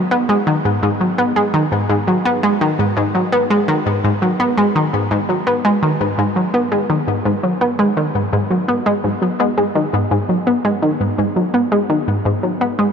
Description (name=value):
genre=ambient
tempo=84 BPM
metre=4/4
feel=straight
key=G# minor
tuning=A4 = 438 Hz
part: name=analog pluck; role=solo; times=0.0-12.9 s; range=G#2 to B3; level=-14 LUFS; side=equal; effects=chorus, ping-pong delay
room=wet huge ambient reverb, RT60 7.9 s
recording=cassette tape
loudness=-14 LUFS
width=side -6 dB against mid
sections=0.0-9.0 A section; 9.0-12.9 B section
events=none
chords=none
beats=| 0.47 1.18 1.90 2.61 | 3.33 4.04 4.75 5.47 | 6.18 6.90 7.61 8.32 | 9.04 9.75 10.47 11.18 | 11.90 12.61